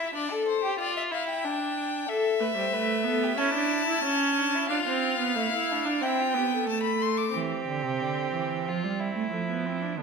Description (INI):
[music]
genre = classical, baroque-style fugue for string quartet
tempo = 91 BPM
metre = 4/4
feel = straight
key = D minor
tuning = A4 = 441 Hz
[part]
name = clear violin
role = melody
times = 0.0-7.3 s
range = C5 to D6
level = -29 LUFS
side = left 5 dB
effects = none
[part]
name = rich violin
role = second line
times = 0.0-10.0 s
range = C#4 to C5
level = -30 LUFS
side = left 2 dB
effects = none
[part]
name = rich viola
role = accompaniment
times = 2.4-10.0 s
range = G3 to E4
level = -28 LUFS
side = right 5 dB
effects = none
[part]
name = rich cello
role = bass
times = 7.3-10.0 s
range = C3 to A3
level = -31 LUFS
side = right 7 dB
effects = none
[sound]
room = wet recital hall reverb, RT60 1.4 s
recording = minimal, uncompressed stereo recording, faint mains hum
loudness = -25 LUFS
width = side -5 dB against mid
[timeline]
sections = 0.0-7.3 A section; 7.3-10.0 B section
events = none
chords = 0.0 N.C.; 0.8 Dm; 2.1 A5; 3.4 A/C#; 4.7 Dm; 6.0 Am; 7.3 C; 8.7 F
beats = 0.14 0.79 1.43 | 2.08 2.73 3.39 4.05 | 4.71 5.37 6.02 6.68 | 7.34 8.01 8.67 9.32 | 9.98